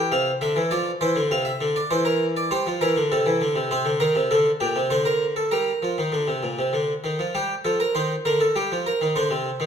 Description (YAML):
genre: classical, baroque-style two-part invention for harpsichord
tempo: 100 BPM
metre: 3/4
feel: straight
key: F major, G minor from 3.7 s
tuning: A4 = 441 Hz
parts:
  - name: harpsichord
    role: solo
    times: 0.0-9.7 s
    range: Bb2 to F5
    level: -20 LUFS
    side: equal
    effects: none
room: moderate recital hall reverb, RT60 1.4 s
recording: minimal, uncompressed stereo recording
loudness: -20 LUFS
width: side -7 dB against mid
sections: 0.0-3.7 A section; 3.7-7.3 B section; 7.3-9.7 C section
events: none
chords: 0.1 F5/C; 1.9 C7/E; 3.1 C69; 3.7 Cm9; 4.3 Gm/D; 4.9 D5; 5.5 Gm; 9.1 D5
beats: | 0.11 0.71 1.30 | 1.90 2.50 3.10 | 3.70 4.30 4.90 | 5.51 6.12 6.73 | 7.34 7.94 8.55 | 9.14